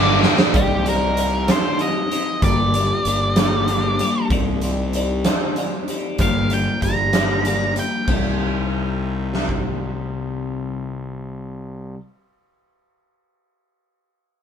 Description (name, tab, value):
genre	quiet-loud alternative rock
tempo	64 BPM (dotted quarters)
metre	6/8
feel	straight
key	C minor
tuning	A4 = 440 Hz
part	octave-fuzz lead guitar	melody	0.0-8.1 s	G4 to Bb5	-22 LUFS	equal	distortion
part	heavy high-gain guitar	riff	0.0-0.5 s	G2 to G3	-26 LUFS	equal	distortion
part	scooped high-gain guitar	riff	0.0-0.5 s	D3 to D4	-24 LUFS	left 8 dB	distortion
part	thick fuzz guitar	riff	0.0-0.5 s	G2 to D4	-22 LUFS	right 10 dB	distortion
part	fuzz fingered electric bass	bass	0.0-11.9 s	G1 to C2	-24 LUFS	equal	overdrive
part	big rock drum kit	drums	0.2-9.6 s	crash cymbal, hi-hat, kick drum, snare drum	-21 LUFS	right 1 dB	none
part	twelve-string electric guitar	arpeggios	0.6-12.0 s	C3 to D5	-25 LUFS	left 4 dB	phaser, slapback echo
room	moderate studio reverb, RT60 0.6 s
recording	band playing live in one room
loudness	-18 LUFS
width	side -8 dB against mid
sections	0.5-8.1 A section; 8.1-11.8 B section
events	drum fill 0.2-0.5; lead electric guitar solo 0.5-8.1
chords	0.0 Gm; 0.5 Cmadd9; 2.4 Gm; 4.3 Cmadd9; 6.2 Gm; 8.1 Cmadd9